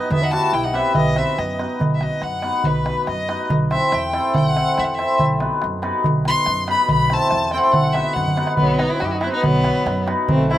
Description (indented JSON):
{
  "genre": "balkan folk, Balkan wedding band",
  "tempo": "142 BPM",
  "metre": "2/4",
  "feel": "straight",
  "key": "B phrygian dominant",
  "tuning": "A4 = 442 Hz",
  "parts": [
    { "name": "clear violin", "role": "melody", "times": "0.0-10.6 s", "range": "B3 to C6", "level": "-22 LUFS", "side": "left 2 dB", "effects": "none" },
    { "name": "mellow tenor saxophone", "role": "second line", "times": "0.0-1.8, 8.6-10.6 s", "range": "F#3 to F#4", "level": "-26 LUFS", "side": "right 3 dB", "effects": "slapback echo" },
    { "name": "cimbalom", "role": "accompaniment", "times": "0.0-10.6 s", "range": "A3 to C5", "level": "-21 LUFS", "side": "left 1 dB", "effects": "slapback echo" },
    { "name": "darbuka", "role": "percussion", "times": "0.0-10.6 s", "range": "none", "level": "-22 LUFS", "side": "right 2 dB", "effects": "none" },
    { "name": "upright bass", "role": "bass", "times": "0.1-10.5 s", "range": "B1 to F#2", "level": "-27 LUFS", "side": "equal", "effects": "none" }
  ],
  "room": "little or no reverb",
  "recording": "recorded outdoors, with no room sound",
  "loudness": "-16 LUFS",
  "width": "side -13 dB against mid",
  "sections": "0.0-1.8 A section; 1.8-8.6 B section; 8.6-10.6 C section",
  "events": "violin solo 1.8-8.6; drum fill 8.2-8.6",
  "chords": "0.1 Em; 1.0 B; 3.5 Am/B; 5.2 B; 6.9 Am/B; 7.7 B"
}